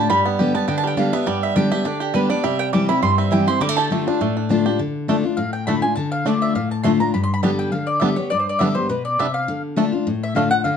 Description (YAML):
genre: bluegrass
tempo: 205 BPM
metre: 4/4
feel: swing 53% on 8ths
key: D dorian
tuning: A4 = 440 Hz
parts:
  - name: bluegrass banjo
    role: melody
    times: 0.0-10.4 s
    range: G3 to G4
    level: -24 LUFS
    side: right 6 dB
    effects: none
  - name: picked steel-string acoustic guitar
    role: accompaniment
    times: 0.0-10.8 s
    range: G2 to G4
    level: -20 LUFS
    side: left 3 dB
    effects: none
  - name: mandolin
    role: stabs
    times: 0.0-3.9 s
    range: G4 to D6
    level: -22 LUFS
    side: right 3 dB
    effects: none
  - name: mandolin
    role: melody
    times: 5.4-10.8 s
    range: B4 to C6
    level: -22 LUFS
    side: left 1 dB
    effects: none
room: moderate studio reverb, RT60 0.7 s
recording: dark, warm production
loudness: -17 LUFS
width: side -7 dB against mid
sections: 0.0-4.8 A section; 4.8-10.8 A section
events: mandolin solo 0.0-4.8, 4.8-10.8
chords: 0.1 G; 2.4 C; 3.6 Dm; 7.1 G; 9.5 Dm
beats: | 0.10 0.39 0.69 0.98 | 1.27 1.57 1.86 2.15 | 2.45 2.74 3.03 3.33 | 3.62 3.91 4.21 4.50 | 4.79 5.08 5.38 5.67 | 5.96 6.26 6.55 6.84 | 7.14 7.43 7.72 8.02 | 8.31 8.60 8.89 9.19 | 9.48 9.77 10.07 10.36 | 10.65